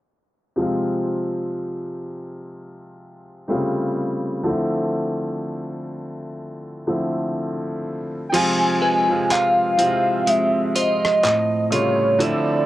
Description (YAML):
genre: contemporary R&B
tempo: 62 BPM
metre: 4/4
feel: swing 58% on 16ths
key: unclear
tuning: A4 = 442 Hz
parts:
  - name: bright grand piano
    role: accompaniment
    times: 0.6-12.7 s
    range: C3 to F4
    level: -23 LUFS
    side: left 1 dB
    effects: none
  - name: warm velvety synth lead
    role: melody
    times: 8.3-12.7 s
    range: C#5 to Ab5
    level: -19 LUFS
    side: equal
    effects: chorus
  - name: clean electric guitar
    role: arpeggios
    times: 8.3-12.7 s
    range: A2 to F4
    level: -24 LUFS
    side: right 4 dB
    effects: none
  - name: dusty soul sampler-style drum kit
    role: drums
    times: 8.3-12.5 s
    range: crash cymbal, handclaps, hi-hat, rim click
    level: -25 LUFS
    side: left 1 dB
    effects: cassette tape
  - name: glassy synth bell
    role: texture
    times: 8.8-11.7 s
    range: B4 to C5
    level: -32 LUFS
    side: left 2 dB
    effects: chorus, tremolo, analog delay
room: moderate booth ambience, RT60 0.2 s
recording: home recording on cassette, low-pass filter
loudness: -19 LUFS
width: side -15 dB against mid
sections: 0.6-8.3 A section; 8.3-12.7 B section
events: filter sweep 0.6-8.3; kick muted 8.3-12.7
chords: 0.6 Fm; 3.5 A7alt; 4.5 Dm9; 8.3 Fm; 11.2 A7alt